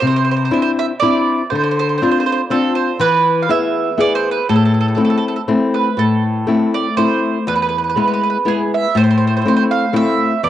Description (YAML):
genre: italian folk, Italian serenade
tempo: 121 BPM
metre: 3/4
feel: straight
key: A harmonic minor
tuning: A4 = 440 Hz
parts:
  - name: mandolin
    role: melody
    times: 0.0-10.5 s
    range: G#4 to F5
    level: -18 LUFS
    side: right 7 dB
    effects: cassette tape
  - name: nylon-string guitar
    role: accompaniment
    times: 0.0-10.5 s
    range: E2 to G#4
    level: -15 LUFS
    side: left 3 dB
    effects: cassette tape
room: wet spring reverb, RT60 2.7 s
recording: home recording on cassette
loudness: -13 LUFS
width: side -12 dB against mid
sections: 0.0-6.0 A section; 6.0-10.5 A section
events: none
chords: 0.0 Cadd9; 1.5 Dm7; 3.0 E; 4.5 Am; 7.5 E; 9.0 Am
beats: | 0.02 0.52 1.01 | 1.51 2.00 2.50 | 2.99 3.49 3.98 | 4.48 4.98 5.48 | 5.98 6.48 6.97 | 7.47 7.96 8.46 | 8.95 9.44 9.93 | 10.43